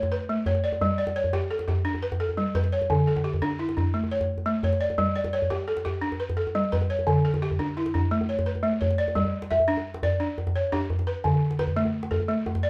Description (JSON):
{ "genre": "west african traditional, West African string and xylophone music", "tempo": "115 BPM (dotted quarters)", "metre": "12/8", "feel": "straight", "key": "G lydian", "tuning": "A4 = 437 Hz", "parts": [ { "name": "balafon", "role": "arpeggios", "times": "0.0-12.7 s", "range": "D3 to E5", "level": "-27 LUFS", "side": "equal", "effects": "none" }, { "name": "djembe", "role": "percussion", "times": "0.0-12.6 s", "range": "none", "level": "-31 LUFS", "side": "equal", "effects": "none" } ], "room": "moderate large studio reverb, RT60 0.8 s", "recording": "band playing live in one room", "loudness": "-26 LUFS", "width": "mono", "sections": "0.0-9.2 A section; 9.2-12.7 B section", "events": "none", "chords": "0.0 A; 0.8 G; 2.9 D5; 3.9 A; 5.0 G; 7.1 D5; 8.1 A; 9.2 G5; 11.2 D5", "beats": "0.29 | 0.81 1.33 1.85 2.38 | 2.90 3.42 3.94 4.46 | 4.99 5.51 6.03 6.55 | 7.08 7.60 8.12 8.64 | 9.16 9.69 10.21 10.73 | 11.25 11.77 12.29" }